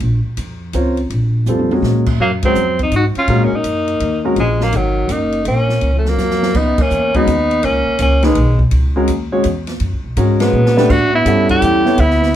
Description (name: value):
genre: modal jazz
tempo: 165 BPM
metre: 3/4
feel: swing 65% on 8ths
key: Eb dorian, C# dorian from 6.5 s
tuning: A4 = 437 Hz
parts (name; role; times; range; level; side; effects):
- upright bass; bass; 0.0-12.3 s; Gb1 to Bb2; -17 LUFS; equal; none
- open jazz drum kit; drums; 0.0-12.3 s; crash cymbal, hi-hat, kick drum, ride cymbal, snare drum, toms; -23 LUFS; right 1 dB; none
- warm concert grand piano; accompaniment; 0.7-4.4, 7.2-12.0 s; G3 to F#5; -17 LUFS; left 1 dB; none
- clear tenor saxophone; melody; 2.2-12.4 s; Gb3 to G4; -16 LUFS; right 1 dB; plate reverb
- mellow alto saxophone; second line; 2.2-12.3 s; Eb3 to E4; -20 LUFS; left 1 dB; none
room: wet small room reverb, RT60 0.5 s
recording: heard from further back in the room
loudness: -13 LUFS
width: side -11 dB against mid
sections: 0.0-6.5 A section; 6.5-12.4 B section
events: drum fill 1.5-1.8, 6.2-6.5, 10.5-10.9; band accent 2.4, 6.7, 10.4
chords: 0.0 Ebm9; 6.5 C#13sus4; 10.9 A13sus4